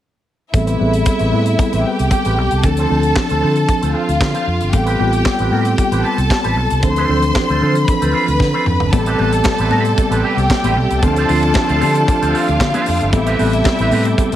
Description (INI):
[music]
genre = disco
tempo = 114 BPM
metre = 4/4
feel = straight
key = A minor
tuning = A4 = 438 Hz
[part]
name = clear studio string section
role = second line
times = 0.5-14.4 s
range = E4 to C6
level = -19 LUFS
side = equal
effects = tape echo
[part]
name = electric guitar with an envelope filter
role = accompaniment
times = 0.5-14.4 s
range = C4 to C5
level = -25 LUFS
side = right 5 dB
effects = low-pass filter
[part]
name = mellow tine electric piano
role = accompaniment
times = 0.5-14.4 s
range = E3 to A4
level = -19 LUFS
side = left 1 dB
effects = medium stereo tremolo, low-pass filter
[part]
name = fingered electric bass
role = bass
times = 0.5-14.4 s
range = G1 to D3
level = -18 LUFS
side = equal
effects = none
[part]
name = modern studio drum kit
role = drums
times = 0.5-14.4 s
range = handclaps, hi-hat, kick drum, snare drum, toms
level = -19 LUFS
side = equal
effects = none
[part]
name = overdriven tonewheel organ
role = sustained chords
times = 8.9-14.4 s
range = C3 to G4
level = -25 LUFS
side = right 1 dB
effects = chorus vibrato, wide subtle chorus, low-pass filter
[part]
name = congas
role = percussion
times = 8.9-14.0 s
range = none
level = -25 LUFS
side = left 6 dB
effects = none
[sound]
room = light reverb, studio reverb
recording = none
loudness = -13 LUFS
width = side -12 dB against mid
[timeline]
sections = 0.5-14.4 A section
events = filter sweep 0.5-14.4; drum fill 8.4-8.9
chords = 0.5 Am9; 2.6 Dm7; 4.7 Am9; 6.8 Dm7; 8.9 Am9; 11.0 Dm7; 13.1 Am9